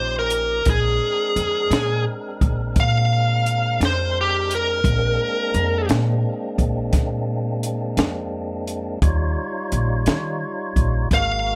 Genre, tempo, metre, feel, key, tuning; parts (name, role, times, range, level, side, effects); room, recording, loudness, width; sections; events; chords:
slow blues; 58 BPM (dotted quarters); 12/8; straight; A4 = 440 Hz
smooth overdriven lead guitar; melody; 0.0-11.6 s; G4 to F5; -23 LUFS; equal
tonewheel organ; sustained chords; 0.0-11.6 s; F3 to Db5; -31 LUFS; equal; slow rotary speaker
upright bass; bass; 0.0-11.6 s; Ab1 to Eb3; -25 LUFS; equal
compact cocktail drum kit; drums; 0.3-11.3 s; hi-hat, kick drum, snare drum; -24 LUFS; equal
light reverb; -21 LUFS; mono
0.0-11.6 A section
0.0 Eb9; 0.7 Bb9; 9.0 Eb9